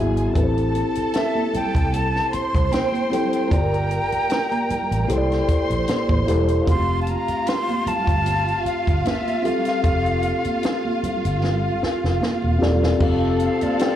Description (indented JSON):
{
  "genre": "lush 1970s-style soul",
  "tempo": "76 BPM",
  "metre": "4/4",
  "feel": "swing 54% on 16ths",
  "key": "F major",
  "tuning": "A4 = 441 Hz",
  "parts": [
    { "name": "warm studio string section", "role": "second line", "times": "0.0-14.0 s", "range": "C4 to C6", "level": "-26 LUFS", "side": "equal", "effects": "slapback echo" },
    { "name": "mellow tine electric piano", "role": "accompaniment", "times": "0.0-14.0 s", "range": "A3 to G5", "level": "-24 LUFS", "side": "left 2 dB", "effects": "slow stereo tremolo, slapback echo" },
    { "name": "vintage muted fingered electric bass", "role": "bass", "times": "0.0-13.7 s", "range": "E1 to C2", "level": "-23 LUFS", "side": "equal", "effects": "none" },
    { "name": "compact cocktail drum kit", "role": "drums", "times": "0.2-14.0 s", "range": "crash cymbal, hi-hat, kick drum, snare drum", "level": "-24 LUFS", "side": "equal", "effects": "none" },
    { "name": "congas", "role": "percussion", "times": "0.4-13.8 s", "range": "none", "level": "-30 LUFS", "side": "right 4 dB", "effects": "slapback echo" },
    { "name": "breathy bright jazz flute", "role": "melody", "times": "1.2-14.0 s", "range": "D5 to C6", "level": "-26 LUFS", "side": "equal", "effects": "slapback echo, tape echo" }
  ],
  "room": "light reverb",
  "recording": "live gig heard through the venue's PA, club reverb",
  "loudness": "-18 LUFS",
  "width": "side -11 dB against mid",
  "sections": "0.0-13.0 A section",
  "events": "drum fill 11.4-13.0",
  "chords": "0.4 Am7; 3.5 Gm7; 5.1 C13; 6.7 Fadd9",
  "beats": "| 0.36 1.15 1.94 2.72 | 3.51 4.30 5.09 5.88 | 6.68 7.47 8.26 9.05 | 9.84 10.63 11.43 12.22 | 13.01 13.80"
}